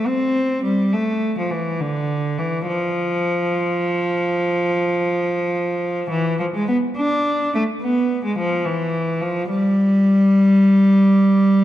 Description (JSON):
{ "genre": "classical, baroque-style suite movement for unaccompanied cello", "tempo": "70 BPM (dotted quarters)", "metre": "12/8", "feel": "rubato", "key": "unclear", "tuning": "A4 = 440 Hz", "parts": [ { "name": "rich cello", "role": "solo", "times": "0.0-11.6 s", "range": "D3 to D4", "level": "-16 LUFS", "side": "equal", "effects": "none" } ], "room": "wet concert hall reverb, RT60 2.0 s", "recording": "dark, warm production", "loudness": "-17 LUFS", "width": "side -13 dB against mid", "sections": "0.0-11.6 A section", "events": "none", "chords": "none" }